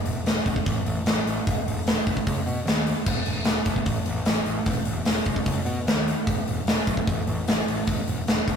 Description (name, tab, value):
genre	punk rock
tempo	150 BPM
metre	4/4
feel	straight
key	unclear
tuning	A4 = 440 Hz
part	fuzz picked electric bass	bass	0.0-8.6 s	E1 to B2	-29 LUFS	equal	overdrive
part	big rock drum kit	drums	0.1-8.6 s	crash cymbal, hi-hat, kick drum, snare drum	-23 LUFS	equal	none
room	light reverb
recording	rough rehearsal-room recording, warm saturation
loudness	-22 LUFS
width	side -7 dB against mid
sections	0.0-8.6 A section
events	none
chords	none